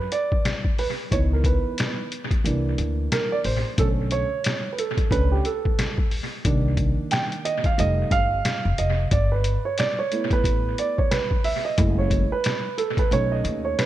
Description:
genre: hip hop, jazz-hop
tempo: 90 BPM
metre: 4/4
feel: swing 60% on 16ths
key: unclear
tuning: A4 = 439 Hz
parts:
  - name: dark concert grand piano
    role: accompaniment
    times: 0.0-13.9 s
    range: D3 to G5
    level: -25 LUFS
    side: right 4 dB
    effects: none
  - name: upright bass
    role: bass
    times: 0.0-13.7 s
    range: F1 to D#2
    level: -24 LUFS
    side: left 1 dB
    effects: none
  - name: trip hop sampler-style drum kit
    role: drums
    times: 0.1-13.9 s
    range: hi-hat, kick drum, snare drum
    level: -24 LUFS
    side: left 1 dB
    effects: analog delay
room: light reverb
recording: echo-heavy mix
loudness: -20 LUFS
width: side -13 dB against mid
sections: 0.0-13.9 A section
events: grand piano solo 0.0-13.9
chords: 0.0 E7(no3) (rootless); 1.1 C#m9; 2.4 C9; 3.8 Bm9; 6.4 Cm7; 7.8 F9; 9.1 G69; 11.8 F#m9; 13.1 B7

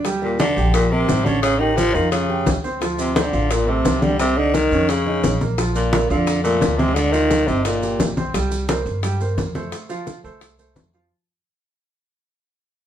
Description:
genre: Afro-Cuban jazz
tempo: 174 BPM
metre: 4/4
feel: straight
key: Bb major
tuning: A4 = 437 Hz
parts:
  - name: warm baby grand piano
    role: accompaniment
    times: 0.0-11.1 s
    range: F3 to G5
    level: -26 LUFS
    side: right 4 dB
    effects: none
  - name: upright bass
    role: bass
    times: 0.0-11.1 s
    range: G1 to G2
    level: -23 LUFS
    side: equal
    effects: none
  - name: bongos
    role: percussion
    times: 0.0-11.1 s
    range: none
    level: -27 LUFS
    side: left 5 dB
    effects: none
  - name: congas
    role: percussion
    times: 0.1-10.9 s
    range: none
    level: -24 LUFS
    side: left 1 dB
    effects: none
  - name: maracas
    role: percussion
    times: 0.1-11.1 s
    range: none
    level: -35 LUFS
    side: right 4 dB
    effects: none
  - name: growling tenor saxophone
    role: melody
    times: 0.2-8.1 s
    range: Bb2 to E#3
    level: -21 LUFS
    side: left 3 dB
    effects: none
  - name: breathy trombone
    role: second line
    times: 0.2-8.1 s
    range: Bb3 to E#4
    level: -24 LUFS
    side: right 5 dB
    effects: none
room: moderate large studio reverb, RT60 0.8 s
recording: band playing live in one room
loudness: -17 LUFS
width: side -10 dB against mid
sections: 0.0-8.3 A section; 8.3-11.1 B section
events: fade-out 8.3-11.1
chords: 0.1 Ebmaj7; 1.4 A7alt; 2.8 Dm7; 4.2 Cm; 4.9 Bbmadd11; 5.6 Bbmaj7; 7.0 Ddim; 7.7 Gmadd11; 8.3 C5; 9.7 F

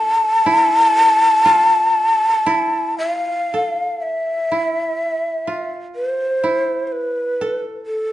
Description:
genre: japanese traditional, Japanese chamber music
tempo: 55-65 BPM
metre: 4/4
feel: rubato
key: A hirajoshi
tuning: A4 = 440 Hz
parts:
  - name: breathy mellow shakuhachi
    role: melody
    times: 0.0-8.1 s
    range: A4 to A5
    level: -15 LUFS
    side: left 1 dB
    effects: none
  - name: koto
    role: second line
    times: 0.0-8.1 s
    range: E4 to A4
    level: -26 LUFS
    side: right 3 dB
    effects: none
room: light reverb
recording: nothing above 11.0 kHz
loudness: -15 LUFS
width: side -13 dB against mid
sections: 0.0-4.0 A section; 4.0-8.1 B section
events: none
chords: none

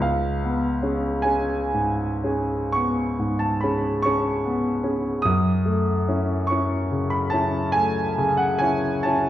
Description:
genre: classical, romantic nocturne for solo piano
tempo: 38-52 BPM (dotted quarters)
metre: 12/8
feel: rubato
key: unclear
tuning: A4 = 439 Hz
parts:
  - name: warm grand piano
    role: solo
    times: 0.0-9.3 s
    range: C#2 to D#6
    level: -20 LUFS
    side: equal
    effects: none
room: wet recital hall reverb, RT60 1.4 s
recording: dark, warm production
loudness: -20 LUFS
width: side -12 dB against mid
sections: 0.0-9.3 A section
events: none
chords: 0.0 C#7; 5.3 F#m7

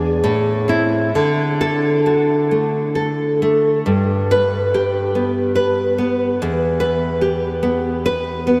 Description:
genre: romantic piece for solo classical guitar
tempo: 65-75 BPM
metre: 3/4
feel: rubato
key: G major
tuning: A4 = 440 Hz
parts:
  - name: nylon-string guitar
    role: solo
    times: 0.0-8.6 s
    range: E2 to B4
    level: -18 LUFS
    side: equal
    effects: subtle chorus, analog delay
room: wet huge ambient reverb, RT60 7.3 s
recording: dreamy mix soaked in reverb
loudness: -18 LUFS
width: mono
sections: 0.0-8.6 A section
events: none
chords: 0.2 Am; 1.1 D; 3.9 G; 6.4 Em

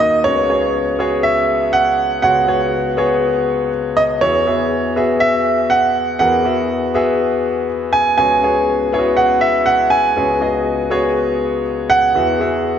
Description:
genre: pop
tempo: 121 BPM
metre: 4/4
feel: straight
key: unclear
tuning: A4 = 441 Hz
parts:
  - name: clear grand piano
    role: melody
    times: 0.0-12.8 s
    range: C#5 to G#5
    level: -16 LUFS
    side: right 2 dB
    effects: none
  - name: warm concert grand piano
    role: accompaniment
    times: 0.0-12.8 s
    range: C#2 to E5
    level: -17 LUFS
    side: left 2 dB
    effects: none
room: wet concert hall reverb, RT60 2.0 s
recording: nothing above 7.7 kHz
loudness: -13 LUFS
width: side -8 dB against mid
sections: 0.3-12.8 A section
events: none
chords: 0.3 C#7sus4; 4.2 Eadd9; 8.2 C#7sus4; 12.2 Eadd9

